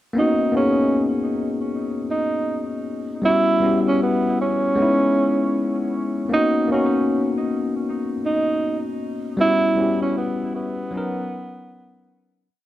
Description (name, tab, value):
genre	hip hop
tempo	78 BPM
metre	4/4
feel	swing 61% on 16ths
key	B major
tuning	A4 = 440 Hz
part	bell-like tine electric piano	accompaniment	0.1-12.5 s	F#3 to A#4	-21 LUFS	left 2 dB	cassette tape, low-pass filter
part	mellow tenor saxophone	melody	0.2-12.4 s	B3 to E4	-22 LUFS	right 2 dB	low-pass filter, dub echo
room	light reverb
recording	echo-heavy mix, cassette tape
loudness	-18 LUFS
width	side -14 dB against mid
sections	0.2-12.5 A section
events	fade-out 9.4-12.5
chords	0.2 Bmaj9; 3.2 Em6; 4.8 C#m9; 6.3 Bmaj9; 9.4 Em6; 10.9 Bmaj7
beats	| 0.16 0.93 1.70 2.46 | 3.23 4.00 4.77 5.54 | 6.31 7.08 7.85 8.62 | 9.39 10.16 10.93 11.70